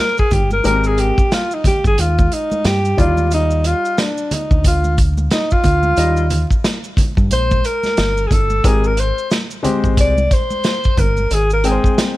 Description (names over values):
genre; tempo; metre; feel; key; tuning
hip hop, jazz-hop; 90 BPM; 4/4; swing 60% on 16ths; Ab lydian; A4 = 439 Hz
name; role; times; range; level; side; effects
breathy alto saxophone; melody; 0.0-12.0 s; D4 to D5; -18 LUFS; equal; none
vintage drum kit; drums; 0.2-12.2 s; hi-hat, kick drum, snare drum; -17 LUFS; equal; none
maracas and congas; percussion; 0.2-12.2 s; none; -27 LUFS; right 2 dB; none
deep dub fingered electric bass; bass; 0.3-11.8 s; G1 to G2; -17 LUFS; equal; none
dark upright piano; accompaniment; 0.6-12.2 s; G3 to G5; -21 LUFS; left 3 dB; none
room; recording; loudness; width
studio reverb; vinyl crackle; -13 LUFS; side -17 dB against mid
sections
0.0-12.2 A section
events
alto saxophone solo 0.0-12.2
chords
0.0 Abmaj9; 3.0 Ebmaj9; 8.6 Abmaj7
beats
| 0.65 1.31 1.98 2.65 | 3.31 3.98 4.65 5.31 | 5.98 6.65 7.31 7.98 | 8.65 9.31 9.98 10.65 | 11.31 11.98